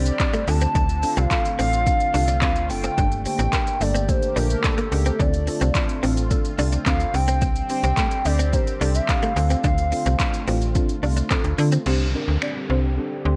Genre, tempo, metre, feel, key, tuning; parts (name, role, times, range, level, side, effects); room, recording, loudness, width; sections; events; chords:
dance-pop; 108 BPM; 4/4; straight; D minor; A4 = 440 Hz
hollow clarinet-like synth lead; melody; 0.0-10.4 s; A4 to A5; -28 LUFS; equal; chorus, delay
deep mellow chord stab; accompaniment; 0.0-13.4 s; Bb3 to D5; -32 LUFS; equal; chorus, phaser, sidechain pumping
sweeping resonant pad; sustained chords; 0.0-13.4 s; D3 to G4; -34 LUFS; equal; chorus, sidechain pumping
slap-like FM bass; bass; 0.0-13.4 s; F#1 to D3; -24 LUFS; equal; sidechain pumping
deep house drum kit; drums; 0.1-12.6 s; crash cymbal, finger snaps, handclaps, hi-hat, kick drum, shaker; -26 LUFS; equal
direct-recorded clean electric guitar; riff; 0.3-11.8 s; A3 to D4; -32 LUFS; equal; ensemble chorus
downlifter; sound effects; 11.9-13.4 s; -38 LUFS; equal
light reverb; worn, warbling old tape, cassette tape, warbly pitch drift; -21 LUFS; mono
0.0-11.9 A section; 11.9-13.4 B section
0.5 Dm7; 3.0 Gmadd9; 5.2 Dm7; 7.1 Csus2; 9.4 Dm7; 11.9 Csus2